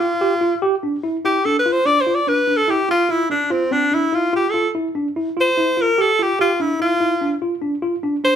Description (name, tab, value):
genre	progressive instrumental, progressive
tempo	146 BPM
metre	7/4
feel	straight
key	F major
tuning	A4 = 436 Hz
part	clear tenor saxophone	melody	0.0-8.4 s	C4 to D5	-17 LUFS	left 1 dB	none
part	tine electric piano	arpeggios	0.0-8.4 s	C4 to G4	-21 LUFS	right 2 dB	medium stereo tremolo
room	light reverb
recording	band playing live in one room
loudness	-16 LUFS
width	side -9 dB against mid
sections	0.0-8.4 A section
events	tenor saxophone solo 0.0-8.4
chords	0.0 F5; 0.6 N.C.; 3.5 F5; 6.4 N.C.